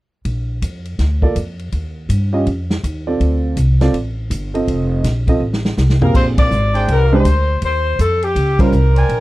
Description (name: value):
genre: jazz, big band swing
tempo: 163 BPM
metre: 4/4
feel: swing 64% on 8ths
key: Bb major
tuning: A4 = 441 Hz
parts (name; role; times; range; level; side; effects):
- upright bass; bass; 0.2-9.2 s; F1 to G2; -16 LUFS; equal; none
- vintage drum kit; drums; 0.2-9.2 s; crash cymbal, hi-hat, kick drum, ride cymbal, snare drum, toms; -19 LUFS; equal; none
- warm upright piano; accompaniment; 1.2-8.7 s; Bb2 to F5; -18 LUFS; right 2 dB; none
- clear saxophone section; melody; 6.0-9.2 s; G4 to D5; -18 LUFS; left 2 dB; tape echo
- mellow trumpet section; stabs; 6.7-9.2 s; D4 to Ab5; -22 LUFS; right 2 dB; none
room: little or no reverb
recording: dry, close 1970s-style studio recording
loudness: -14 LUFS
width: side -18 dB against mid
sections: 0.2-6.1 A section; 6.1-9.2 B section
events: drum fill 5.4-6.1; band accent 6.3, 8.5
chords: 0.2 Bb; 1.7 Ebadd9; 3.2 Dm7; 4.7 F7; 6.1 Bb13; 7.6 Eb13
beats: | 0.25 0.62 0.99 1.36 | 1.73 2.09 2.46 2.83 | 3.20 3.57 3.94 4.31 | 4.67 5.04 5.41 5.78 | 6.15 6.52 6.88 7.25 | 7.62 7.99 8.36 8.73 | 9.09